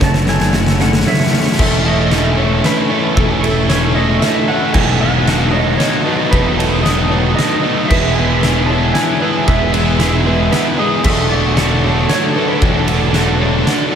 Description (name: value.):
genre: post-rock.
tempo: 114 BPM.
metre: 3/4.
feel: straight.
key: unclear.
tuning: A4 = 439 Hz.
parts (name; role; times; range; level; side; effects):
clean lap steel guitar; melody; 0.0-13.6 s; A4 to A5; -21 LUFS; right 1 dB; lush chorus, diffuse ambient delay.
hollow soft pad; sustained chords; 0.0-14.0 s; F#3 to E6; -27 LUFS; equal; chorus.
felt-muted upright piano; arpeggios; 0.0-13.9 s; G#4 to C#5; -28 LUFS; right 4 dB; none.
twelve-string electric guitar; arpeggios; 0.0-14.0 s; E2 to C#5; -26 LUFS; left 3 dB; none.
crunchy overdriven guitar; riff; 0.0-14.0 s; F#2 to A4; -19 LUFS; right 7 dB; spring reverb.
sludgy distorted guitar; riff; 0.0-14.0 s; B2 to E4; -20 LUFS; left 7 dB; overdrive.
growling fingered electric bass; bass; 0.0-13.6 s; E1 to F#1; -17 LUFS; equal; overdrive.
oversized low-tuned drum kit; drums; 0.0-13.8 s; crash cymbal, kick drum, ride cymbal, snare drum; -17 LUFS; equal; none.
room: wet huge ambient reverb, RT60 7.2 s.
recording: dreamy mix soaked in reverb.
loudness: -11 LUFS.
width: side -8 dB against mid.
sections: 0.0-1.6 A section; 1.6-14.0 B section.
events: build-up 0.0-1.6; drum fill 0.0-1.6.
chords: 0.0 F#m7; 1.6 Amaj7/E; 4.8 B7/E; 7.9 E; 11.1 Dmaj7/E.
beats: | 0.02 0.54 1.07 | 1.60 2.12 2.65 | 3.17 3.70 4.22 | 4.75 5.28 5.80 | 6.33 6.85 7.38 | 7.90 8.43 8.95 | 9.48 10.00 10.53 | 11.05 11.57 12.10 | 12.62 13.15 13.67.